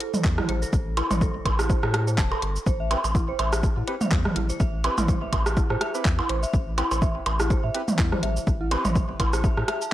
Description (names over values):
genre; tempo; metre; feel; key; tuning
minimal techno; 124 BPM; 4/4; swing 56% on 16ths; A minor; A4 = 441 Hz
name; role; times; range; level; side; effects
dark detuned synth bell; riff; 0.0-9.8 s; E4 to A5; -32 LUFS; equal; chorus, phaser, sidechain pumping, analog delay
garage drum kit; drums; 0.0-9.9 s; cabasa, handclaps, hi-hat; -32 LUFS; equal; none
minimal click drum kit; percussion; 0.1-9.8 s; percussion blips, rim click, toms; -27 LUFS; right 2 dB; overdrive
saturated sub bass; bass; 0.2-9.6 s; E1 to A2; -27 LUFS; equal; sidechain pumping
electronic kick drum; drums; 0.2-9.5 s; none; -24 LUFS; equal; overdrive
percussive organ stab; stabs; 2.9-8.8 s; C4 to B4; -36 LUFS; right 2 dB; wide subtle chorus, tape echo
room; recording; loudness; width
digital ambience; dry, gritty hardware recording, transformer saturation; -21 LUFS; side -14 dB against mid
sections
0.0-9.9 A section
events
none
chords
0.0 Am7